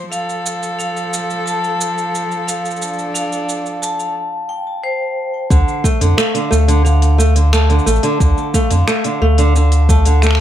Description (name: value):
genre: folktronica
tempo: 89 BPM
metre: 4/4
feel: straight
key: unclear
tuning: A4 = 441 Hz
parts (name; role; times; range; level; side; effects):
- dark string quartet; sustained chords; 0.0-4.1 s; F3 to A4; -22 LUFS; equal; none
- vibraphone with hard mallets; second line; 0.1-10.4 s; C5 to A5; -23 LUFS; equal; ping-pong delay
- organic electronic drum kit; drums; 0.1-10.4 s; cabasa, finger snaps, hi-hat; -24 LUFS; right 1 dB; none
- nylon-string guitar; arpeggios; 5.5-10.4 s; D3 to A3; -17 LUFS; right 1 dB; tape echo
- warm sub bass; bass; 5.5-10.4 s; A1 to F2; -12 LUFS; equal; none
- electronic kick drum; drums; 5.5-10.0 s; none; -15 LUFS; equal; none
room: light reverb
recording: none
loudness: -13 LUFS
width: side -11 dB against mid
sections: 0.0-5.5 A section; 5.5-10.4 B section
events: none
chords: 0.1 F; 5.5 Dm